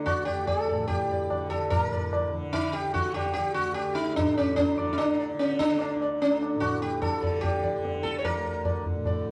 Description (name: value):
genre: indian classical, Hindustani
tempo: 147 BPM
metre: 4/4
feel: straight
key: unclear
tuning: A4 = 441 Hz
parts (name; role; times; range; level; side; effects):
- sitar; melody; 0.0-9.2 s; C#4 to D5; -29 LUFS; equal; none
- tanpura; drone; 0.0-9.3 s; D2 to D3; -37 LUFS; equal; none
- tabla; percussion; 0.1-9.2 s; none; -34 LUFS; equal; none
room: wet recital hall reverb, RT60 1.3 s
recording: worn, warbling old tape, cassette tape, warbly pitch drift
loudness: -27 LUFS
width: mono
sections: 0.0-1.7 A section; 1.7-9.3 B section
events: none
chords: none